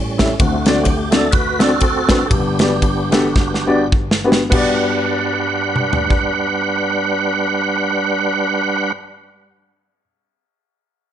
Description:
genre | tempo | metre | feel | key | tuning
uptempo gospel | 97-130 BPM | 4/4 | swing 57% on 8ths | G major | A4 = 439 Hz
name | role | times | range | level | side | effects
dark concert grand piano | accompaniment | 0.0-9.0 s | G1 to E5 | -19 LUFS | left 2 dB | none
tonewheel organ | sustained chords | 0.0-8.9 s | G2 to F#5 | -18 LUFS | right 2 dB | slow rotary speaker, chorus vibrato
modern studio drum kit | drums | 0.2-6.2 s | crash cymbal, kick drum, ride cymbal, snare drum, toms | -17 LUFS | equal | none
room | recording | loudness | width
light reverb, small room reverb | nothing above 10.7 kHz | -14 LUFS | side -10 dB against mid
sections
0.0-4.5 A section; 4.5-9.5 B section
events
tonewheel organ solo 0.0-4.5; slowing down 0.4-4.5; drum fill 3.4-4.5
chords
0.4 D7; 2.3 Gmaj7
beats
| 0.39 0.86 1.33 1.81 | 2.31 2.82 3.36 3.92 | 4.52 5.14 5.76 6.37 | 6.99 7.61 8.22 8.84

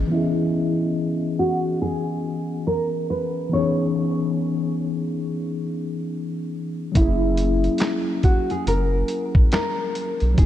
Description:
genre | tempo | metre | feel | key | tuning
lo-fi hip hop | 70 BPM | 4/4 | swing 62% on 16ths | C# dorian | A4 = 440 Hz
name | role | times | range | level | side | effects
mellow tine electric piano | accompaniment | 0.0-10.5 s | E3 to D#5 | -24 LUFS | left 2 dB | medium stereo tremolo, low-pass filter
round analog bass | bass | 0.0, 7.0-10.5 s | E1 to B1 | -21 LUFS | equal | none
nylon-string guitar | melody | 0.1-10.5 s | E4 to C#5 | -25 LUFS | equal | lush chorus, low-pass filter
dusty soul sampler-style drum kit | drums | 7.0-10.5 s | handclaps, hi-hat, kick drum, snare drum | -19 LUFS | equal | none
room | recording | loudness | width
moderate lush hall reverb, RT60 2.8 s | dreamy mix soaked in reverb, cassette tape | -20 LUFS | side -12 dB against mid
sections
0.1-10.5 A section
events
filter sweep 0.1-10.5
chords
0.1 C#m7; 7.0 F#7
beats
| 0.10 0.95 1.81 2.67 | 3.53 4.38 5.24 6.10 | 6.96 7.81 8.67 9.53 | 10.38

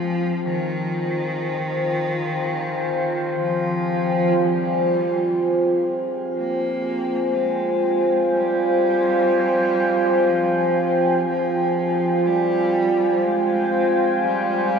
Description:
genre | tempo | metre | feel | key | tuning
ambient | free time | none | none | F minor | A4 = 440 Hz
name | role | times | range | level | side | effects
rich cello | melody | 0.0-14.8 s | Eb3 to Bb3 | -26 LUFS | left 2 dB | shimmer reverb, ping-pong delay
deep dark ambient pad | sustained chords | 0.0-14.8 s | F4 to Ab5 | -19 LUFS | right 1 dB | chorus, built-in reverb, shimmer reverb
room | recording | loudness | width
wet cathedral reverb, RT60 5.5 s | none | -18 LUFS | side -6 dB against mid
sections
0.0-4.4 A section; 4.4-14.8 B section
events
fade-in on cello 4.4-14.8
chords
0.0 Fmadd9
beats
free time

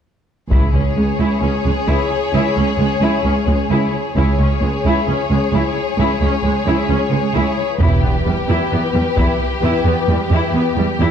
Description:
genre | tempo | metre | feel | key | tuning
cinematic, epic orchestral film score | 66 BPM | 4/4 | straight | unclear | A4 = 440 Hz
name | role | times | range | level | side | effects
warm symphonic violin section | melody | 0.5-11.1 s | B4 to C#5 | -24 LUFS | left 8 dB | none
clear symphonic violin section | second line | 0.5-11.1 s | G4 to G#4 | -24 LUFS | left 2 dB | none
clear symphonic viola section | accompaniment | 0.5-11.1 s | G3 to E4 | -22 LUFS | equal | none
rich symphonic cello section | bass | 0.5-11.1 s | C#2 to E2 | -17 LUFS | right 2 dB | none
rich symphonic double bass section | bass | 0.5-8.0 s | E1 to C#2 | -20 LUFS | right 2 dB | none
taiko ensemble | drums | 0.5-2.3, 7.8-9.6 s | none | -19 LUFS | left 1 dB | none
room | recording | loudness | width
moderate scoring stage reverb, RT60 1.6 s | dark, warm production | -14 LUFS | side -8 dB against mid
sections
0.5-11.1 A section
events
none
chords
0.5 C#m; 7.8 Em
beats
| 0.51 1.43 2.34 3.25 | 4.16 5.07 5.98 6.89 | 7.81 8.72 9.63 10.54

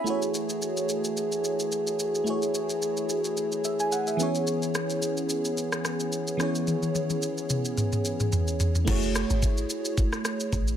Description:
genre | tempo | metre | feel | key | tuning
amapiano | 109 BPM | 4/4 | swing 55% on 16ths | unclear | A4 = 439 Hz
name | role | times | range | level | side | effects
FM electric piano with soft pad layer | accompaniment | 0.0-10.8 s | E3 to G#5 | -29 LUFS | right 2 dB | chorus
mellow French horn section | sustained chords | 0.1-8.8 s | E3 to G#4 | -30 LUFS | left 1 dB | sidechain pumping
smooth R&B drum kit | drums | 0.1-10.8 s | crash cymbal, kick drum, rim click, shaker, toms | -29 LUFS | equal | none
deep log drum bass | bass | 8.9-10.8 s | F#1 to A1 | -28 LUFS | equal | none
room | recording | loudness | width
light reverb | none | -25 LUFS | side -9 dB against mid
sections
0.1-8.9 A section; 8.9-10.8 B section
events
drum fill 6.7-8.9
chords
0.1 F#m9; 4.2 C#m7/E; 8.9 F#m9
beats
| 0.07 0.62 1.17 1.72 | 2.27 2.82 3.37 3.92 | 4.47 5.02 5.57 6.12 | 6.67 7.22 7.78 8.32 | 8.88 9.43 9.98 10.53

